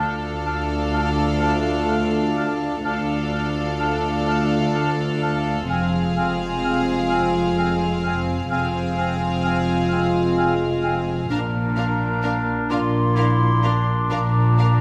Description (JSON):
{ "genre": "cinematic", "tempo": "42 BPM (dotted quarters)", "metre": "6/8", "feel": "rubato", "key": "D minor", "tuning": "A4 = 440 Hz", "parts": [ { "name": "clear studio violin section", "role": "melody", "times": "0.0-14.7 s", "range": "F5", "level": "-34 LUFS", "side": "equal", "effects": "none" }, { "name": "bright clarinet", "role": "second line", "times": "0.0-14.8 s", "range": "C4 to F4", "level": "-34 LUFS", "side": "equal", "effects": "none" }, { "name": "clear studio violin section", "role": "second line", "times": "0.0-14.7 s", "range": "Ab4 to Bb4", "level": "-32 LUFS", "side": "equal", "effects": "none" }, { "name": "silver concert flute", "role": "second line", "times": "0.0-14.8 s", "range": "Ab5 to C6", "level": "-33 LUFS", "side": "equal", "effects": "none" }, { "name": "warm oboe", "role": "second line", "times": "0.0-14.8 s", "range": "D5 to F5", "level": "-33 LUFS", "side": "equal", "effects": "none" }, { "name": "rich studio viola section", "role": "accompaniment", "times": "0.0-14.7 s", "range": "C4 to D4", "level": "-31 LUFS", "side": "equal", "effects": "none" }, { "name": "mellow French horn section", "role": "sustained chords", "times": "0.0-14.8 s", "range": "Ab3 to F4", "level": "-28 LUFS", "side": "equal", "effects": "none" }, { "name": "dark chamber double bass section", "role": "bass", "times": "0.0-14.8 s", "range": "F1 to D2", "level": "-28 LUFS", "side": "equal", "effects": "none" }, { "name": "warm studio cello section", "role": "bass", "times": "0.0-14.8 s", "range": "D2 to Bb2", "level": "-29 LUFS", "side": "equal", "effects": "none" } ], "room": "moderate scoring stage reverb, RT60 1.6 s", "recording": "none", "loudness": "-21 LUFS", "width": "mono", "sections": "0.0-14.8 A section", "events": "none", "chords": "0.0 Dm; 5.7 Fm; 11.3 Bb" }